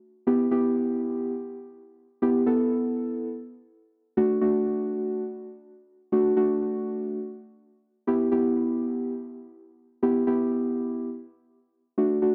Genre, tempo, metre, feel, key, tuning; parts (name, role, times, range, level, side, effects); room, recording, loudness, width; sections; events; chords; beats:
pop; free time; E minor; A4 = 440 Hz
muted felt-like synth keys; solo; 0.3-12.3 s; A3 to A4; -26 LUFS; equal; chorus, analog delay
moderate studio reverb, RT60 0.5 s; -26 LUFS; mono
0.0-12.0 A section
0.3 Em; 4.2 D; 8.1 Em
free time